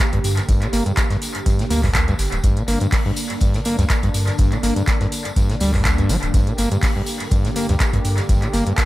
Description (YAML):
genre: acid house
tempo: 123 BPM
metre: 4/4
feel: swing 54% on 16ths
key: G minor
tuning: A4 = 440 Hz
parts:
  - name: warm analog pad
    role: sustained chords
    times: 0.0-8.9 s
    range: D3 to G4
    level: -28 LUFS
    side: equal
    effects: chorus, sidechain pumping
  - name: booming analog drum machine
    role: drums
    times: 0.0-8.9 s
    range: handclaps, hi-hat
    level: -26 LUFS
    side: right 1 dB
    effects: overdrive, analog delay
  - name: electronic kick drum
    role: drums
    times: 0.0-8.9 s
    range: none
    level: -19 LUFS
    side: equal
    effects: overdrive
  - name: warm soul drum kit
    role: drums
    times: 0.0-8.9 s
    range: hi-hat, snare drum, tambourine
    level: -37 LUFS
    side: left 1 dB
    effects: none
  - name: impact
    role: sound effects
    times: 0.0-0.5 s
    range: none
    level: barely audible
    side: none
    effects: none
  - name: overdriven acid bass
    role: riff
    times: 0.1-8.7 s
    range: G2 to Bb3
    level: -22 LUFS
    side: equal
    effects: distortion, tape echo
  - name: tambourine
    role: percussion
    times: 0.1-8.9 s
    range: none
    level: -33 LUFS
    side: left 2 dB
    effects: analog delay
  - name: warm sub bass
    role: bass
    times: 0.2-8.6 s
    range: D1 to G2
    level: -22 LUFS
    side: equal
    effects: sidechain pumping
room: light reverb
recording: echo-heavy mix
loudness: -16 LUFS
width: side -17 dB against mid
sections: 0.0-8.9 A section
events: impact 0.0-0.5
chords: 0.0 Gm